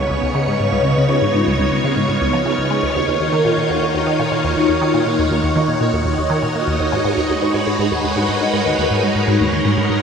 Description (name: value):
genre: ambient, sequencer-driven space music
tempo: 121 BPM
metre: 4/4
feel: straight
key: unclear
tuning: A4 = 440 Hz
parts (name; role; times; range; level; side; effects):
- phased string machine; sustained chords; 0.0-10.0 s; C#3 to C#5; -18 LUFS; left 1 dB; ensemble chorus, phaser, shimmer reverb
- resonant blip pluck; riff; 0.0-10.0 s; C#2 to G#3; -19 LUFS; equal; phaser, wide subtle chorus, ping-pong delay, shimmer reverb
- bubbling stepped-filter texture; texture; 0.0-10.0 s; C#5; -24 LUFS; right 3 dB; chorus, built-in reverb, shimmer reverb
room: wet plate reverb, RT60 2.5 s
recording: echo-heavy mix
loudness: -15 LUFS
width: side -6 dB against mid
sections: 0.0-10.0 A section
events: none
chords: 0.0 C#7; 3.0 D#m7; 6.9 G#m7